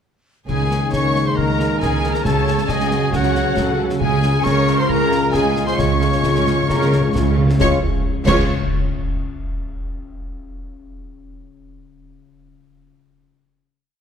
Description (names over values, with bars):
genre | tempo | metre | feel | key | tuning
cinematic, heroic adventure film score | 135 BPM | 4/4 | straight | Db major | A4 = 439 Hz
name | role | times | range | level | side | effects
warm symphonic violin section | melody | 0.5-8.5 s | Gb5 to Db6 | -25 LUFS | left 2 dB | none
flute section | second line | 0.5-8.5 s | Db5 to Db6 | -29 LUFS | left 2 dB | none
warm oboe | second line | 0.5-8.5 s | Gb4 to Db5 | -28 LUFS | left 1 dB | none
warm symphonic violin section | second line | 0.5-8.5 s | Gb4 to Db5 | -27 LUFS | left 3 dB | none
clear trombone section | sustained chords | 0.5-7.8 s | Db3 to Ab3 | -26 LUFS | right 4 dB | none
mellow French horn section | sustained chords | 0.5-7.8 s | Bb3 to Gb4 | -26 LUFS | left 4 dB | none
concert harp | arpeggios | 0.5-9.4 s | Db3 to F5 | -26 LUFS | left 9 dB | none
clear symphonic cello section | bass | 0.5-8.5 s | Db2 to Db3 | -24 LUFS | right 5 dB | none
warm symphonic double bass section | bass | 0.5-8.5 s | Db2 | -23 LUFS | right 3 dB | none
clash cymbals, concert bass drum and concert snare drum | drums | 0.5-8.5 s | none | -27 LUFS | equal | none
rich symphonic viola section | accompaniment | 1.4-8.5 s | Ab3 to Eb5 | -27 LUFS | right 1 dB | none
timpani | percussion | 2.2-2.9, 5.8-8.5 s | Db3 | -23 LUFS | equal | none
cymbal swell, concert snare drum, concert bass drum and clash cymbals | percussion | 4.0-9.1 s | none | -28 LUFS | equal | none
room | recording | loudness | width
moderate scoring stage reverb, RT60 1.7 s | none | -15 LUFS | side -8 dB against mid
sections
0.5-7.6 theme; 7.6-9.4 final chord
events
timpani fill 5.8-7.6; band accent 7.6-8.0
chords
0.5 Absus2/Db; 2.3 Gbm/Db; 4.0 Db